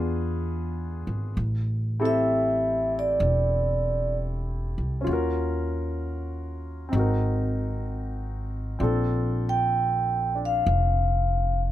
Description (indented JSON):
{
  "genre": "jazz ballad",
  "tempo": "64 BPM",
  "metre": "4/4",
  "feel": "swing 69% on 8ths",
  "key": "unclear",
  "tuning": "A4 = 440 Hz",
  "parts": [
    { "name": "warm concert grand piano", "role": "accompaniment", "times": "0.0-11.7 s", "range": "B3 to Bb4", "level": "-30 LUFS", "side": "left 1 dB", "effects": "none" },
    { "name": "upright bass", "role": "bass", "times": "0.0-11.7 s", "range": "E1 to E2", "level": "-27 LUFS", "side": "equal", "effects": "none" },
    { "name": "vibraphone with soft mallets", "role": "melody", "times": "2.1-11.6 s", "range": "D5 to G5", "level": "-24 LUFS", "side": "equal", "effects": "none" }
  ],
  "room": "light reverb",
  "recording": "close, detailed microphones",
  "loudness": "-23 LUFS",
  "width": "side -13 dB against mid",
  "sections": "0.0-11.7 A section",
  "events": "vibraphone solo 0.0-11.7",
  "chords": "0.0 E7b9; 1.4 Am7; 5.1 Ebm7; 6.9 Ab9; 8.8 Bbmaj9"
}